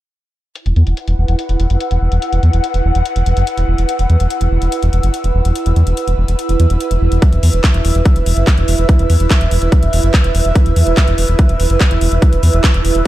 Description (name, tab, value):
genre	psychedelic trance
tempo	144 BPM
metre	4/4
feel	straight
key	unclear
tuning	A4 = 441 Hz
part	big-room dance drum kit	drums	0.6-13.0 s	handclaps, hi-hat	-23 LUFS	left 1 dB	low-pass filter on hats, studio reverb, low-pass filter on snare
part	airy breathy pad	texture	0.7-13.1 s	E4 to E6	-19 LUFS	right 2 dB	chorus, sidechain pumping
part	round analog bass	bass	0.7-13.0 s	E1 to E2	-13 LUFS	equal	tube saturation
part	electronic kick drum	drums	7.2-12.7 s	none	-11 LUFS	equal	overdrive, studio reverb
room	digital ambience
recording	dark, warm production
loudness	-11 LUFS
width	side -15 dB against mid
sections	0.6-13.1 A section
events	none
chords	0.6 E5